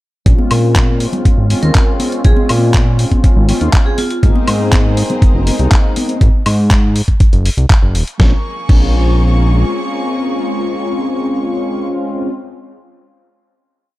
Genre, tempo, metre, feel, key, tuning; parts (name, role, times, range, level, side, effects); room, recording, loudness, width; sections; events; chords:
nu-disco, nu disco; 121 BPM; 4/4; straight; Bb minor; A4 = 440 Hz
mellow synth brass; accompaniment; 0.2-12.3 s; Ab3 to F4; -19 LUFS; left 1 dB; chorus, sidechain pumping
fat analog bass; bass; 0.3-9.6 s; Eb1 to Bb2; -13 LUFS; equal
dusty soul sampler-style drum kit; drums; 0.3-8.8 s; crash cymbal, handclaps, hi-hat, snare drum, woodblock; -21 LUFS; equal
electronic kick drum; drums; 0.3-8.8 s; -11 LUFS; equal
congas; percussion; 0.4-6.1 s; -22 LUFS; left 1 dB
vibraphone with hard mallets; melody; 1.6-4.2 s; F4 to Bb4; -24 LUFS; right 4 dB; digital delay
warm symphonic violin section; sustained chords; 4.2-11.8 s; Bb3 to Db6; -26 LUFS; equal; sidechain pumping
little or no reverb; dark, warm production; -11 LUFS; side -17 dB against mid
0.3-8.2 groove; 8.2-12.2 final chord
0.3 Bbm7; 4.0 Abadd9; 8.2 Bbm7